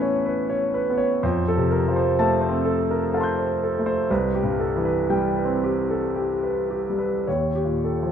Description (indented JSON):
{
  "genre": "classical, impressionist solo piano",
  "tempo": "51-64 BPM",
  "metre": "3/4",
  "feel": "rubato",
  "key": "F major",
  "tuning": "A4 = 441 Hz",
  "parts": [
    { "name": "clear concert grand piano", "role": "solo", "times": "0.0-8.1 s", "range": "C2 to G6", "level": "-20 LUFS", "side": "equal", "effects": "none" }
  ],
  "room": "moderate scoring stage reverb, RT60 1.5 s",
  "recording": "dark, warm production",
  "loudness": "-20 LUFS",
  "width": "side -8 dB against mid",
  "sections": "0.0-8.1 A section",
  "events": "none",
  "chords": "0.0 Aadd9; 1.2 Fadd9; 4.1 Cmaj7; 7.3 Eb7",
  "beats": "0.26 | 1.23 2.19 3.14 | 4.10 5.09 6.16 | 7.26"
}